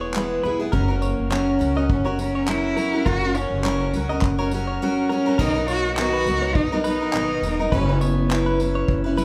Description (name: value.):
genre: acoustic pop.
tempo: 103 BPM.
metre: 4/4.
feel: swing 55% on 16ths.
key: B major.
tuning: A4 = 440 Hz.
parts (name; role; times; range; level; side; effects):
picked steel-string acoustic guitar; accompaniment; 0.0-9.2 s; B2 to B4; -26 LUFS; equal; none.
direct-recorded clean electric guitar; arpeggios; 0.0-9.2 s; A#4 to D#5; -34 LUFS; equal; none.
upright bass; bass; 0.0-9.2 s; E1 to C#2; -28 LUFS; equal; none.
vintage brush drum kit; drums; 0.1-9.2 s; crash cymbal, handclaps, kick drum, tambourine; -29 LUFS; equal; none.
warm cello; melody; 1.0-8.6 s; A#3 to F#4; -26 LUFS; equal; none.
room: moderate recital hall reverb, RT60 1.5 s.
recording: recorded in a church or concert hall.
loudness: -22 LUFS.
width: mono.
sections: 0.0-5.4 A section; 5.4-9.2 B section.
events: none.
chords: 0.0 E; 0.7 F#; 5.4 Bmaj7; 7.7 F#7sus4.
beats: 0.15 | 0.73 1.31 1.90 2.48 | 3.06 3.65 4.23 4.81 | 5.39 5.98 6.56 7.14 | 7.72 8.30 8.88.